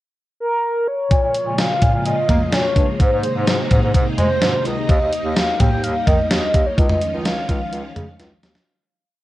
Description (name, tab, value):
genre	synth-pop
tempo	127 BPM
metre	4/4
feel	straight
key	Bb dorian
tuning	A4 = 440 Hz
part	mellow horn-like synth lead	melody	0.4-8.2 s	Bb4 to G5	-21 LUFS	equal	chorus, tape echo, plate reverb
part	string machine, violins	sustained chords	1.1-8.7 s	C3 to F4	-26 LUFS	equal	ensemble chorus
part	warm bass clarinet	bass	1.1-8.5 s	Db2 to Bb3	-24 LUFS	equal	none
part	gated 80s digital drum machine	drums	1.1-8.7 s	hi-hat, kick drum, snare drum, toms	-17 LUFS	equal	gated reverb, gated reverb snare
room	light reverb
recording	worn, warbling old tape, cassette tape, warbly pitch drift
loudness	-16 LUFS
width	side -16 dB against mid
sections	0.0-1.1 pickup bar; 1.1-8.7 verse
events	fade-out 6.8-8.7; drum fill 8.2-8.7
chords	0.0 N.C.; 1.1 Bbm7; 3.0 Abadd9; 4.9 Eb; 6.8 Dbadd9